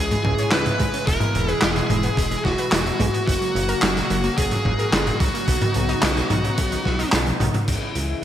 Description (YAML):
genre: synthwave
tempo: 109 BPM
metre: 4/4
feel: straight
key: C# dorian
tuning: A4 = 442 Hz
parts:
  - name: high-gain lead guitar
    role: melody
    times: 0.0-7.1 s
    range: F#4 to B4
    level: -26 LUFS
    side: left 1 dB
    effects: distortion, ping-pong delay
  - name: airy dreamy lead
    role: second line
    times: 0.0-7.1 s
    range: F#4 to B4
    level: -31 LUFS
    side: right 1 dB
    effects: chorus, cassette tape
  - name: chorused pulse-width pad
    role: sustained chords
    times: 0.0-8.2 s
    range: B2 to F#4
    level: -28 LUFS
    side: left 1 dB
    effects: none
  - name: analog pluck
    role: arpeggios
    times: 0.0-7.6 s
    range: A#2 to C#5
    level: -30 LUFS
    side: right 3 dB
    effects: chorus, ping-pong delay
  - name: chorused synth bass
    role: bass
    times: 0.0-8.1 s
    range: E1 to C#2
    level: -26 LUFS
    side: equal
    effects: none
  - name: raw garage drum kit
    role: drums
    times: 0.1-8.1 s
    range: crash cymbal, handclaps, hi-hat, snare drum, toms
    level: -22 LUFS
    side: equal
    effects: gated reverb
  - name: electronic kick drum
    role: drums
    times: 0.2-7.8 s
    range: none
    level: -24 LUFS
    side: equal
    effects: overdrive
room: light reverb, small room reverb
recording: bright 1980s-style digital production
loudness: -18 LUFS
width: side -11 dB against mid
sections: 0.0-7.7 A section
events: drum fill 7.3-7.7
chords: 0.0 C#m; 1.1 E; 3.3 F#; 5.5 Badd9; 7.7 C#m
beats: 0.52 | 1.07 1.62 2.17 2.73 | 3.27 3.83 4.38 4.93 | 5.48 6.03 6.58 7.13 | 7.68 8.23